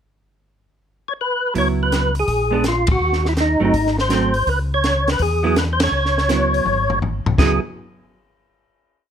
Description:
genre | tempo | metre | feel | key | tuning
soul jazz organ trio | 165 BPM | 4/4 | swing 66% on 8ths | C# minor | A4 = 439 Hz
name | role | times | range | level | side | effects
percussive tonewheel organ | melody | 1.1-7.6 s | D#4 to C#5 | -19 LUFS | equal | slow rotary speaker, overdrive, chorus vibrato
vintage hollow-body jazz guitar | accompaniment | 1.5-7.6 s | F#3 to E4 | -22 LUFS | right 6 dB | none
mellow tonewheel organ | bass | 1.6-7.6 s | G1 to E2 | -22 LUFS | left 1 dB | chorus vibrato, slow rotary speaker
compact cocktail drum kit | drums | 1.6-7.5 s | crash cymbal, hi-hat, kick drum, ride cymbal, snare drum, toms | -22 LUFS | equal | none
room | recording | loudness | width
little or no reverb | close, detailed microphones | -16 LUFS | side -8 dB against mid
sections
0.1-1.6 pickup bar; 1.6-7.4 A section; 7.4-8.8 final chord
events
band accent 2.8, 5.7; drum fill 6.6-7.4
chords
0.1 N.C.; 1.6 C#m7; 2.3 A#7b9; 3.0 D#dim; 3.7 G#7b9; 4.5 C#m7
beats
| 0.10 0.46 0.83 1.19 | 1.55 1.92 2.28 2.65 | 3.01 3.37 3.74 4.10 | 4.47 4.83 5.19 5.56 | 5.92 6.29 6.65 7.01 | 7.38

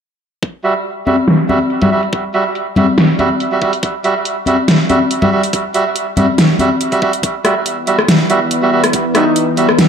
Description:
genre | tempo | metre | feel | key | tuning
deep dubstep | 141 BPM | 4/4 | swing 54% on 16ths, half-time | E harmonic minor | A4 = 440 Hz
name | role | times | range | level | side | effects
dubstep drum kit | drums | 0.4-9.9 s | hi-hat, rim click, snare drum | -14 LUFS | equal | overdrive, low-pass filter on hats, low-pass filter on snare, low-pass filter on room
electronic kick drum | drums | 0.4-9.0 s | none | -21 LUFS | equal | overdrive, high-pass filter on kick, high-pass filter on room
melodica | stabs | 0.6-9.7 s | G3 to E5 | -15 LUFS | right 3 dB | low-pass filter, dub echo
congas | percussion | 1.1-6.7 s | none | -16 LUFS | left 4 dB | none
bowed-like drone | sustained chords | 7.7-9.9 s | E3 to B3 | -17 LUFS | left 2 dB | built-in reverb, vintage 12-bit sampler grit
warm duduk | melody | 9.1-9.5 s | D#4 | -17 LUFS | left 1 dB | dub echo
room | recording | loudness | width
wet echo chamber reverb, RT60 1.3 s, small room ambience | dark, warm production | -11 LUFS | side -7 dB against mid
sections
0.4-7.2 A section; 7.2-9.9 B section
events
filter sweep on drum 0.4-7.2; build-up 7.2-9.9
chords
0.4 Emadd9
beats
| 0.43 0.85 1.28 1.70 | 2.13 2.55 2.98 3.40 | 3.83 4.26 4.68 5.11 | 5.53 5.96 6.38 6.81 | 7.23 7.66 8.09 8.51 | 8.94 9.36 9.79

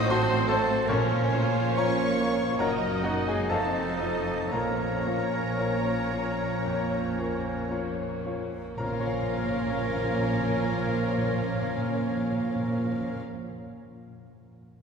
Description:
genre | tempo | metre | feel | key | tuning
classical, romantic movement for piano and orchestra | 54-79 BPM | 4/4 | rubato | Bb minor | A4 = 440 Hz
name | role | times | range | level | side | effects
bright concert grand piano | melody | 0.0-14.8 s | F2 to Eb6 | -32 LUFS | left 2 dB | none
rich studio violin section | melody | 0.0-13.2 s | Db5 to Eb6 | -41 LUFS | left 2 dB | none
bright small flute group | second line | 0.0-13.2 s | C5 to Eb5 | -37 LUFS | left 3 dB | none
mellow clarinet | second line | 0.0-13.2 s | Db4 to Eb5 | -38 LUFS | right 1 dB | none
warm oboe | second line | 0.0-13.2 s | Db4 to Eb5 | -37 LUFS | right 1 dB | none
warm symphonic violin section | second line | 0.0-13.2 s | A3 to Bb4 | -38 LUFS | left 1 dB | none
mellow bassoon | accompaniment | 0.0-13.2 s | F3 to F#3 | -36 LUFS | equal | none
warm studio viola section | accompaniment | 0.0-13.2 s | Bb3 to Eb5 | -35 LUFS | equal | none
mellow French horn section | sustained chords | 0.0-13.2 s | Db3 to Eb4 | -37 LUFS | equal | none
warm trombone section | sustained chords | 0.0-13.2 s | F3 to C4 | -35 LUFS | right 4 dB | none
clear trumpet section | stabs | 0.0-13.2 s | C4 to Eb4 | -37 LUFS | equal | none
rich symphonic cello section | bass | 0.0-13.2 s | F2 to Bb2 | -36 LUFS | right 2 dB | none
rich symphonic double bass section | bass | 0.0-13.2 s | F1 to Bb1 | -35 LUFS | right 2 dB | none
timpani | percussion | 0.9-13.2 s | Bb2 | -36 LUFS | right 1 dB | none
room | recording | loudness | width
wet church reverb, RT60 3.2 s | recorded in a church or concert hall | -25 LUFS | side -6 dB against mid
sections
0.0-8.8 A section; 8.8-12.8 B section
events
slowing down 0.0-8.8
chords
0.0 Adim7; 0.9 Bbm; 2.6 Ebm/Gb; 3.5 F7; 4.5 Bbm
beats
0.11 | 0.89 1.77 2.60 3.51 | 4.51 5.58 6.63 7.70 | 8.78 9.78 10.78 11.80

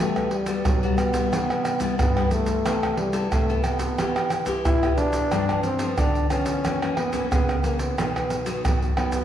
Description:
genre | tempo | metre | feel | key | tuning
samba and choro | 90 BPM | 4/4 | straight | E minor | A4 = 441 Hz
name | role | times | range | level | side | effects
growling trombone | melody | 0.0-9.2 s | F#3 to E4 | -26 LUFS | equal | none
nylon-string guitar | accompaniment | 0.0-9.2 s | F#2 to A4 | -27 LUFS | left 3 dB | none
egg shaker, surdo, pandeiro and tamborim | percussion | 0.2-9.2 s | none | -24 LUFS | right 1 dB | none
room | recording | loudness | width
wet recital hall reverb, RT60 1.4 s | recorded in a church or concert hall | -21 LUFS | side -10 dB against mid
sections
0.0-9.2 A section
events
none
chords
0.0 Emadd9; 1.3 Cmaj7; 2.6 Amadd9/C; 4.0 Em; 5.3 G7; 6.6 F#7; 8.0 B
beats
0.65 1.32 1.98 | 2.65 3.32 3.98 4.65 | 5.32 5.98 6.65 7.32 | 7.98 8.65

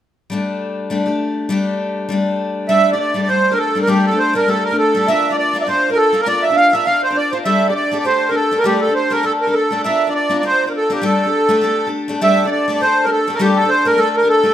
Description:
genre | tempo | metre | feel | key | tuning
celtic folk | 202 BPM | 4/4 | swing 57% on 8ths | G dorian | A4 = 440 Hz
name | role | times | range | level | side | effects
picked steel-string acoustic guitar | accompaniment | 0.3-14.5 s | G3 to Bb4 | -19 LUFS | left 3 dB | none
accordion | melody | 2.7-14.5 s | G4 to F5 | -14 LUFS | right 2 dB | light tremolo tuning
room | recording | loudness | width
moderate recital hall reverb, RT60 1.4 s | minimal, uncompressed stereo recording | -14 LUFS | side -11 dB against mid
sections
0.3-2.7 A section; 2.7-12.2 B section; 12.2-14.5 B section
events
none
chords
0.3 Gsus2; 5.1 Bb; 7.5 Gsus2; 9.8 Bb; 11.0 Gsus2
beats
| 0.31 0.61 0.91 1.21 | 1.50 1.80 2.10 2.40 | 2.69 2.99 3.29 3.59 | 3.88 4.18 4.48 4.78 | 5.08 5.37 5.67 5.97 | 6.27 6.57 6.86 7.16 | 7.46 7.76 8.05 8.35 | 8.65 8.95 9.25 9.54 | 9.84 10.14 10.44 10.73 | 11.03 11.33 11.62 11.92 | 12.22 12.51 12.81 13.11 | 13.40 13.70 13.99 14.29

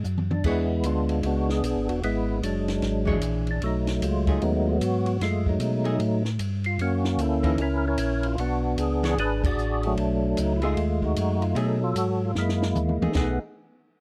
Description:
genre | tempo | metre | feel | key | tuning
soul jazz organ trio | 151 BPM | 4/4 | swing 64% on 8ths | unclear | A4 = 440 Hz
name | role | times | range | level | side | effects
archtop guitar, miked and amplified | accompaniment | 0.0-13.4 s | E3 to C#5 | -32 LUFS | equal | none
mellow tonewheel organ | bass | 0.0-13.4 s | E1 to B2 | -29 LUFS | equal | slow rotary speaker
compact cocktail drum kit | drums | 0.0-13.3 s | crash cymbal, hi-hat, kick drum, ride cymbal, snare drum, toms | -34 LUFS | equal | none
percussive tonewheel organ | melody | 0.3-13.4 s | F#3 to D5 | -28 LUFS | equal | chorus vibrato, slow rotary speaker
room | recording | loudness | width
small room ambience | dry, close 1970s-style studio recording | -25 LUFS | mono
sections
0.0-13.1 A section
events
drum fill 0.0-0.4, 12.4-13.1; band accent 9.4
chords
0.4 E13; 3.6 B13; 6.8 F#; 8.4 E13 (rootless); 10.0 B13; 12.4 F#13; 13.1 B6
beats
0.05 | 0.45 0.84 1.24 1.64 | 2.03 2.43 2.83 3.22 | 3.62 4.02 4.42 4.81 | 5.21 5.61 6.00 6.40 | 6.80 7.19 7.59 7.99 | 8.38 8.78 9.18 9.57 | 9.97 10.37 10.77 11.16 | 11.56 11.96 12.35 12.75 | 13.15

